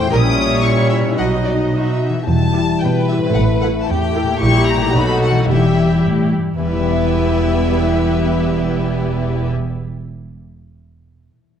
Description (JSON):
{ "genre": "cinematic", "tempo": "111 BPM", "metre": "2/4", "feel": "straight", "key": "E minor", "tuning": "A4 = 440 Hz", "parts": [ { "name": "rich chamber violin section", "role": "melody", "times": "0.0-9.5 s", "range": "D5 to D#6", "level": "-24 LUFS", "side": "left 4 dB", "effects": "none" }, { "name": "rich chamber violin section", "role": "second line", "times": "0.0-9.5 s", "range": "F#4 to D#5", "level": "-24 LUFS", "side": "left 2 dB", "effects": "none" }, { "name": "rich chamber viola section", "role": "accompaniment", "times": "0.0-9.5 s", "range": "B3 to A4", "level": "-23 LUFS", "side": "right 1 dB", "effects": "none" }, { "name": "mellow French horn section", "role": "sustained chords", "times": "0.0-9.5 s", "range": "F#3 to E4", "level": "-21 LUFS", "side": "left 3 dB", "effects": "none" }, { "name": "concert harp", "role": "arpeggios", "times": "0.0-10.5 s", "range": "A2 to E5", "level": "-22 LUFS", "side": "left 5 dB", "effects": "none" }, { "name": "rich chamber cello section", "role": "bass", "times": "0.1-9.5 s", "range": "E2 to B2", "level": "-21 LUFS", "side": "right 3 dB", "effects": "none" }, { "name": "rich chamber double bass section", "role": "bass", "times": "0.1-9.5 s", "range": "E1 to B1", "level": "-21 LUFS", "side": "right 3 dB", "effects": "none" } ], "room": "wet scoring stage reverb, RT60 1.6 s", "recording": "dark, warm production", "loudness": "-14 LUFS", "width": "side -8 dB against mid", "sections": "0.0-6.6 A section; 6.6-8.7 B section", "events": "none", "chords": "0.1 A#dim7; 1.2 B; 2.3 Em; 3.3 Am7; 4.4 A#dim7; 4.9 B7; 5.5 Em", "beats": "| 0.11 0.64 | 1.18 1.72 | 2.27 2.81 | 3.35 3.87 | 4.40 4.93 | 5.48 6.03 | 6.58 7.11 | 7.64 8.18" }